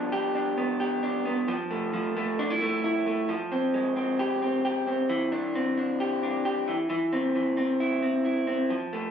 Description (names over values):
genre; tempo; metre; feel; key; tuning
indie pop; 133 BPM; 4/4; straight; C major; A4 = 440 Hz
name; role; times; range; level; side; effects
electric guitar through a small old amp; solo; 0.0-9.1 s; E3 to G4; -25 LUFS; equal; slapback echo
room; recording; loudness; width
moderate large studio reverb, RT60 0.9 s; recorded on a phone in the room, studio ambience, faint mains hum; -25 LUFS; side -8 dB against mid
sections
0.0-1.5 A section; 1.5-9.1 B section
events
none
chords
0.0 G7; 1.5 Dmadd9 (rootless); 3.3 Fmadd9; 5.1 Cadd9; 6.7 C/E